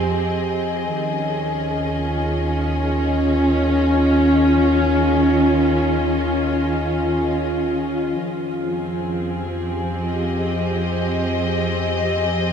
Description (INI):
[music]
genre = ambient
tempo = free time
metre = none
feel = none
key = unclear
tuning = A4 = 440 Hz
[part]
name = dark chamber string section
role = sustained chords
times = 0.0-12.5 s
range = Eb3 to Eb5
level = -18 LUFS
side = equal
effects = none
[part]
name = warm sub bass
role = bass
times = 0.0-12.5 s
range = Eb2 to F2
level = -26 LUFS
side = equal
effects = none
[sound]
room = wet huge ambient reverb, RT60 7.7 s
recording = dreamy mix soaked in reverb, cassette tape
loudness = -18 LUFS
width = side -7 dB against mid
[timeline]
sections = 0.0-12.5 A section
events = fade-out on sub bass 0.0-12.5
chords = 0.0 Fm9; 0.9 Eb9sus4; 8.2 Fm9